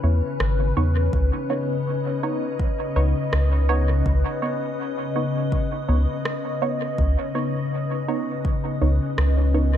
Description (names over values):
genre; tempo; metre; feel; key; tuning
ambient dub; 82 BPM; 4/4; swing 56% on 16ths; unclear; A4 = 440 Hz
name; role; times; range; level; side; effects
soft additive organ-like pad; sustained chords; 0.0-9.8 s; C#3 to D#5; -26 LUFS; left 3 dB; ensemble chorus, built-in reverb
filtered dub chord stab; stabs; 0.0-9.8 s; B3 to C#5; -28 LUFS; right 3 dB; chorus, phaser, vintage 12-bit sampler grit, dub echo
soft dub sub bass; bass; 0.0-9.8 s; G#1 to E2; -19 LUFS; equal; none
electronic rim click; drums; 0.4-9.3 s; none; -32 LUFS; right 1 dB; dub echo
electronic kick drum; drums; 1.1-8.6 s; none; -25 LUFS; equal; none
room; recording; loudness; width
moderate plate reverb, RT60 2.1 s; dreamy mix soaked in reverb; -20 LUFS; side -10 dB against mid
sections
0.0-9.8 A section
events
none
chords
0.0 C#m7; 1.1 Badd9/C#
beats
0.40 | 1.13 1.86 2.60 3.33 | 4.06 4.79 5.52 6.25 | 6.99 7.72 8.45 9.18